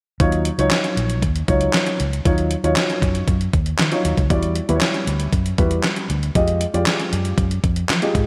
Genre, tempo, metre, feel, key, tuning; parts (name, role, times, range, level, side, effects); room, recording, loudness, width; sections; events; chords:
early-eighties boogie funk; 117 BPM; 4/4; straight; A4 = 440 Hz
dark grand piano; accompaniment; 0.2-8.3 s; Gb3 to Eb5; -24 LUFS; equal; subtle chorus
vintage muted fingered electric bass; bass; 0.2-8.2 s; Bb1 to F3; -24 LUFS; equal
crisp 8-bit digital drum machine; drums; 0.2-8.3 s; handclaps, hi-hat, kick drum, snare drum; -23 LUFS; equal; gated reverb
light reverb; bright 1980s-style digital production; -19 LUFS; mono
0.2-8.3 A section
0.2 Ebm9; 4.3 Em9; 6.4 Fm9